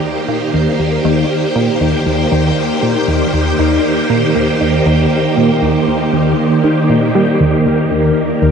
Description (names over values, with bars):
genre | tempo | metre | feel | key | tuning
ambient, sequencer-driven space music | 118 BPM | 4/4 | straight | Eb major | A4 = 440 Hz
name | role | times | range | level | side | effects
phased string machine | sustained chords | 0.0-8.5 s | Eb3 to C5 | -14 LUFS | right 1 dB | ensemble chorus, phaser
concert harp | arpeggios | 0.0-8.5 s | Bb3 to Eb5 | -23 LUFS | equal | auto-pan, tape echo
wind-like tuned noise texture | texture | 0.0-8.5 s | D5 to G5 | -27 LUFS | right 6 dB | built-in reverb
tight sequenced synth | riff | 0.3-8.5 s | Eb2 to G3 | -15 LUFS | left 1 dB | chorus, phaser, tape echo
room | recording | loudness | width
wet huge ambient reverb, RT60 9.3 s | dark, warm production | -11 LUFS | side -6 dB against mid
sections
0.0-8.5 A section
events
none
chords
0.0 Ebmaj7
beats
0.28 0.79 | 1.30 1.81 2.32 2.83 | 3.34 3.84 4.35 4.86 | 5.37 5.88 6.39 6.89 | 7.40 7.91 8.42